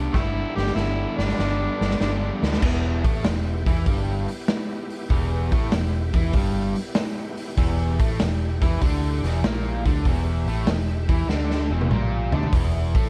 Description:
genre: blues rock power trio and southern rock.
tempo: 97 BPM.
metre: 4/4.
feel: swing 68% on 8ths.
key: E minor.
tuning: A4 = 440 Hz.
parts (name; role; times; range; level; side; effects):
overdriven tonewheel organ; sustained chords; 0.0-12.5 s; B3 to E5; -39 LUFS; equal; slow rotary speaker, chorus vibrato.
overdriven semi-hollow guitar; riff; 0.0-13.1 s; E2 to E4; -31 LUFS; equal; none.
vintage muted fingered electric bass; bass; 0.0-13.1 s; E1 to E2; -27 LUFS; equal; none.
overdriven harmonica; melody; 0.1-2.4 s; G3 to G4; -32 LUFS; equal; none.
bluesy overdriven lead guitar; second line; 0.1-2.4 s; G3 to A3; -40 LUFS; equal; none.
raw garage drum kit; drums; 0.1-13.0 s; crash cymbal, hi-hat, kick drum, snare drum, toms; -26 LUFS; equal; none.
room: light reverb.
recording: none.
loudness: -23 LUFS.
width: mono.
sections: 0.0-2.6 A section; 2.6-12.5 B section.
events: drum fill 0.1-2.6, 11.3-12.5.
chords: 0.0 G; 2.6 Em; 12.5 N.C..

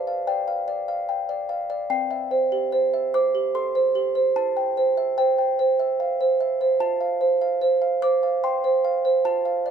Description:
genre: classical, lullaby for music box.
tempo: 74 BPM.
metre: 3/4.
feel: rubato.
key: C major.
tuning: A4 = 440 Hz.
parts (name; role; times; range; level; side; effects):
music box; solo; 0.0-9.7 s; C4 to D6; -20 LUFS; right 2 dB; none.
room: moderate studio reverb, RT60 0.5 s.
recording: faint mains hum.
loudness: -20 LUFS.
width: side -8 dB against mid.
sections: 0.0-9.7 A section.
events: none.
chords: 0.0 G7/B; 1.9 C; 4.4 C/E; 6.8 F.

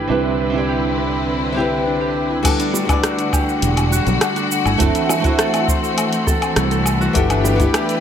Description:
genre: sunset chillout.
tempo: 102 BPM.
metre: 4/4.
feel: straight.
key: E minor.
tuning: A4 = 442 Hz.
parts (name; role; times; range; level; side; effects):
flamenco guitar; accompaniment; 0.0-8.0 s; G3 to F#5; -22 LUFS; moving between left 6 dB and right 8 dB; auto-pan, tape echo.
rich studio string section; sustained chords; 0.0-8.0 s; D3 to B4; -22 LUFS; left 2 dB; none.
concert harp; arpeggios; 0.0-8.0 s; D4 to C5; -23 LUFS; right 1 dB; tape echo.
fretless electric bass; bass; 0.0-7.7 s; E1 to C2; -21 LUFS; equal; ensemble chorus.
deep house drum kit; drums; 2.4-8.0 s; cabasa, crash cymbal, hi-hat, rim click, woodblock; -22 LUFS; equal; none.
electronic kick drum; drums; 2.4-7.7 s; none; -20 LUFS; equal; none.
bongos; percussion; 2.7-7.6 s; none; -28 LUFS; right 4 dB; none.
room: moderate concert hall reverb, RT60 2.3 s.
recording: low-pass filter.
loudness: -15 LUFS.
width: side -8 dB against mid.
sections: 0.0-2.4 A section; 2.4-8.0 B section.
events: none.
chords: 0.1 Cmaj9; 2.4 Em11; 4.8 F#m7b5; 7.2 G69.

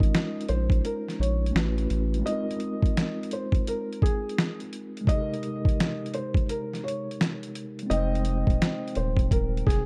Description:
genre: lo-fi hip hop.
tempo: 85 BPM.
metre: 4/4.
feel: swing 65% on 16ths.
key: F minor.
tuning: A4 = 440 Hz.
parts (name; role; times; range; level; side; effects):
felt-muted upright piano; melody; 0.0-9.9 s; Ab4 to Eb5; -35 LUFS; equal; none.
mellow tine electric piano; accompaniment; 0.0-9.9 s; C3 to G5; -35 LUFS; equal; none.
soft dub sub bass; bass; 0.0-2.2, 7.9-9.9 s; Eb1 to Bb1; -29 LUFS; equal; none.
dusty soul sampler-style drum kit; drums; 0.0-9.9 s; hi-hat, kick drum, snare drum; -27 LUFS; equal; overdrive.
room: little or no reverb.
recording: dark, warm production.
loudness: -27 LUFS.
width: mono.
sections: 0.0-9.9 A section.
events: break 2.2-7.9.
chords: 0.0 Bbm7; 1.5 A69; 2.2 Ab69; 5.1 Fm11.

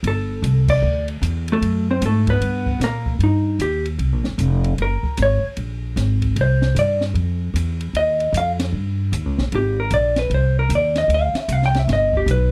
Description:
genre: jazz, small-group swing and bop.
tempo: 152 BPM.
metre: 4/4.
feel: swing 64% on 8ths.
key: C minor from 3.2 s.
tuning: A4 = 440 Hz.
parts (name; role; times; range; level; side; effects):
upright bass; bass; 0.0-12.5 s; F1 to Bb2; -22 LUFS; equal; none.
open jazz drum kit; drums; 0.0-12.4 s; crash cymbal, hi-hat, kick drum, ride cymbal, snare drum; -32 LUFS; equal; none.
vintage hollow-body jazz guitar; melody; 0.1-12.5 s; A3 to G5; -22 LUFS; equal; none.
room: little or no reverb.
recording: dry, close 1970s-style studio recording.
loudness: -20 LUFS.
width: mono.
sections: 0.0-3.2 A section; 3.2-12.5 B section.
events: band accent 0.6; hollow-body jazz guitar solo 3.2-12.5.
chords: 0.0 Gsus2; 1.6 F#dim; 2.4 Gm; 3.2 Cm (rootless); 4.8 F#add9; 6.4 Fsus2; 7.9 Ebadd9; 9.5 Ab; 11.1 Cadd9; 11.9 G.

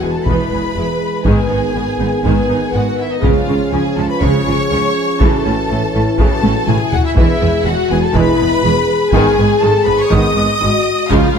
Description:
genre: cinematic, epic orchestral film score.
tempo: 122 BPM.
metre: 4/4.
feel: straight.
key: unclear.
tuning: A4 = 440 Hz.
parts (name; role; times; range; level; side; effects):
clear symphonic violin section; melody; 0.0-11.4 s; D#5 to D#6; -21 LUFS; left 3 dB; none.
rich symphonic violin section; second line; 0.0-11.4 s; D#4 to D#5; -22 LUFS; left 1 dB; none.
rich symphonic viola section; accompaniment; 0.0-11.3 s; C#3 to G#4; -21 LUFS; right 2 dB; none.
dark French horn section; sustained chords; 0.0-11.4 s; E4 to B4; -19 LUFS; left 3 dB; none.
warm trombone section; sustained chords; 0.0-11.3 s; C#3 to C#4; -22 LUFS; right 5 dB; none.
rich symphonic cello section; bass; 0.0-11.4 s; C#2 to C#3; -21 LUFS; right 2 dB; none.
rich symphonic double bass section; bass; 0.0-11.4 s; E1 to C#2; -20 LUFS; right 2 dB; none.
taiko ensemble; drums; 0.3-11.4 s; none; -17 LUFS; equal; none.
room: moderate scoring stage reverb, RT60 1.5 s.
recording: faint mains hum.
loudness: -12 LUFS.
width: side -7 dB against mid.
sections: 0.0-11.4 A section.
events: drum fill 6.4-7.2.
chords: 0.0 E; 1.3 G#m; 3.2 C#; 5.2 A; 7.2 E; 9.1 G#m.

